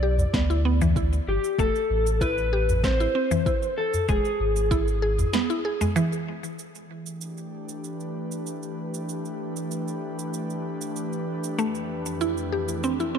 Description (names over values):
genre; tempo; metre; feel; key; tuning
organic downtempo; 96 BPM; 4/4; straight; unclear; A4 = 440 Hz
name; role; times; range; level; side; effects
electric slide guitar; melody; 0.0-5.9 s; G4 to D5; -27 LUFS; left 2 dB; ping-pong delay
mallet-like synth pluck; arpeggios; 0.0-6.1, 11.6-13.2 s; E3 to G#4; -27 LUFS; right 1 dB; chorus, ping-pong delay
warm sub bass; bass; 0.0-5.3 s; E1 to D2; -24 LUFS; equal; sidechain pumping
electronic shaker and snare drum; drums; 0.2-13.1 s; none; -34 LUFS; right 2 dB; none
udu; percussion; 0.2-5.9 s; none; -28 LUFS; equal; none
electronic kick drum; drums; 0.3-4.8 s; none; -27 LUFS; equal; overdrive
airy breathy pad; sustained chords; 6.6-13.2 s; F2 to B4; -30 LUFS; equal; chorus, sidechain pumping
room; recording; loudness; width
light reverb, digital ambience; dark, warm production; -23 LUFS; side -8 dB against mid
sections
0.0-6.6 A section; 6.6-13.2 B section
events
none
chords
0.0 G; 1.6 F (rootless); 4.1 E; 6.6 G; 11.6 F